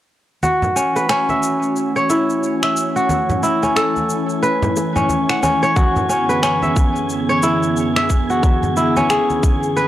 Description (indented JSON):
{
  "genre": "organic downtempo",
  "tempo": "90 BPM",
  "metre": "4/4",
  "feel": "swing 59% on 16ths",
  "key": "F# minor",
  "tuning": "A4 = 439 Hz",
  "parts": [
    { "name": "warbly tape-like pad", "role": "sustained chords", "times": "0.8-9.9 s", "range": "F#2 to C#5", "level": "-22 LUFS", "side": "equal", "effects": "chorus, built-in reverb, vintage 12-bit sampler grit, sidechain pumping" },
    { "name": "kora", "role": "arpeggios", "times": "0.4-9.9 s", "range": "C#4 to F#5", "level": "-17 LUFS", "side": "equal", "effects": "low-pass filter, tape echo" },
    { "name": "electronic cabasa and finger snaps", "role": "drums", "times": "0.4-9.9 s", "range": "none", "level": "-25 LUFS", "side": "left 1 dB", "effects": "overdrive, small room ambience" },
    { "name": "congas and bongos", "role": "percussion", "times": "0.4-9.4 s", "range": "none", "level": "-25 LUFS", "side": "right 1 dB", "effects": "none" },
    { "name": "wind-like tuned noise texture", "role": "texture", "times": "1.6-9.9 s", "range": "G#5", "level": "-32 LUFS", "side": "right 1 dB", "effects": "built-in reverb" },
    { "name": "electronic kick drum", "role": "drums", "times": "5.8-9.6 s", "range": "none", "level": "-15 LUFS", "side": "equal", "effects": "small room ambience" }
  ],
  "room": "light reverb",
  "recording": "dry, gritty hardware recording",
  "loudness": "-15 LUFS",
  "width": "side -13 dB against mid",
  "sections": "0.4-9.9 A section",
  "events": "none",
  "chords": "0.4 F#m7; 5.8 E7/F#"
}